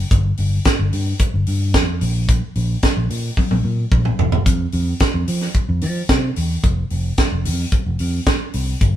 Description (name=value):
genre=disco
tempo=110 BPM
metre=4/4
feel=straight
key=unclear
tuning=A4 = 440 Hz
part: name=fingered electric bass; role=bass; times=0.0-9.0 s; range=E1 to F3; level=-19 LUFS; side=equal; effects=tube saturation
part: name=tight funk drum kit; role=drums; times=0.1-8.9 s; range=hi-hat, kick drum, snare drum, toms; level=-19 LUFS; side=equal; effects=none
room=light reverb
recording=band playing live in one room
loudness=-16 LUFS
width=side -12 dB against mid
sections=0.0-9.0 A section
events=drum fill 3.4-4.5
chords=none